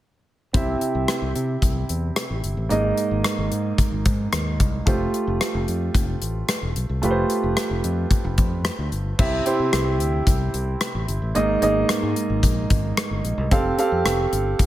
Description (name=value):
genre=1980s-style pop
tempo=111 BPM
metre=4/4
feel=straight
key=unclear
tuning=A4 = 439 Hz
part: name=clear concert grand piano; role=accompaniment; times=0.5-14.7 s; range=Ab2 to F5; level=-23 LUFS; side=right 2 dB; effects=none
part: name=fingered electric bass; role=bass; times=0.5-14.7 s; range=E1 to C3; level=-25 LUFS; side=left 1 dB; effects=none
part: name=gated 80s drum kit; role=drums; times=0.5-14.7 s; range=crash cymbal, hi-hat, kick drum, rim click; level=-22 LUFS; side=left 1 dB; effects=none
room=light reverb, small room ambience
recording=none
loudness=-20 LUFS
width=side -14 dB against mid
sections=0.5-9.2 A section; 9.2-14.7 B section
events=none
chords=0.5 C; 2.7 Absus2; 4.9 Fadd9; 9.2 C; 11.4 Absus2; 13.5 Fadd9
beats=| 0.54 1.08 1.62 2.16 | 2.70 3.25 3.79 4.33 | 4.87 5.41 5.95 6.49 | 7.03 7.57 8.11 8.65 | 9.19 9.73 10.27 10.81 | 11.35 11.89 12.43 12.97 | 13.52 14.06 14.60